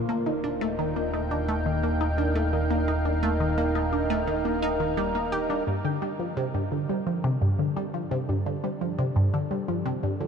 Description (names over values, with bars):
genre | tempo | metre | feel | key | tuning
ambient | 86 BPM | 4/4 | straight | unclear | A4 = 439 Hz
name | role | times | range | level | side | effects
lush unison pad | sustained chords | 0.0-10.3 s | G3 to G5 | -30 LUFS | equal | chorus
resonant blip pluck | riff | 0.0-10.3 s | G2 to G4 | -26 LUFS | equal | phaser, tape echo
fat analog bass | bass | 0.0-5.6 s | Eb1 | -29 LUFS | equal | none
room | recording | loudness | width
wet huge ambient reverb, RT60 7.4 s | dark, warm production | -24 LUFS | side -6 dB against mid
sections
0.0-5.7 A section; 5.7-10.3 A section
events
filter sweep on synth arpeggio sound 0.0-5.7; fade-in on analog synth pad 5.7-10.3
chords
0.1 Ebmaj7; 5.7 Gm7